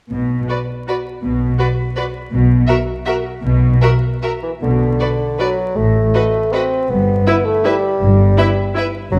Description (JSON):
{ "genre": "classical, orchestral ballroom waltz", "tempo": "146-177 BPM", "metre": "3/4", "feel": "rubato", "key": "B minor", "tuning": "A4 = 440 Hz", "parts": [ { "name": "rich chamber double bass section", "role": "bass", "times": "0.1-9.2 s", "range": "F#1 to B1", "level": "-20 LUFS", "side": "equal", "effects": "none" }, { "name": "warm studio cello section", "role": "bass", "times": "0.1-9.2 s", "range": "F#2 to B2", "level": "-22 LUFS", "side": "equal", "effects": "none" }, { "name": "rich chamber violin section", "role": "melody", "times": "0.5-8.8 s", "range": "D5 to E5", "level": "-30 LUFS", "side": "equal", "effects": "none" }, { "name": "rich chamber violin section", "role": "second line", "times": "0.5-8.8 s", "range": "A#4 to B4", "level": "-27 LUFS", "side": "equal", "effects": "none" }, { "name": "rich chamber viola section", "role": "accompaniment", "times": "0.5-8.8 s", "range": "E4 to F#4", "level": "-25 LUFS", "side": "equal", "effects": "none" }, { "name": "warm bassoon", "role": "accompaniment", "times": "4.4-9.2 s", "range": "D3 to C4", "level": "-20 LUFS", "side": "equal", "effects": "none" } ], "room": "moderate recital hall reverb, RT60 1.6 s", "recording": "dark, warm production, vinyl crackle", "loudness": "-16 LUFS", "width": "mono", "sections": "0.1-4.6 A section; 4.6-9.2 B section", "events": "none", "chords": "0.1 B5; 2.3 N.C.; 4.6 Bm; 5.8 B7(no3)/A (rootless); 6.9 Em/G", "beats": "| 0.11 0.49 0.87 | 1.23 1.59 1.96 | 2.32 2.69 3.07 | 3.44 3.82 4.22 | 4.62 5.00 5.40 | 5.76 6.13 6.52 | 6.89 7.26 7.65 | 8.01 8.38 8.76 | 9.11" }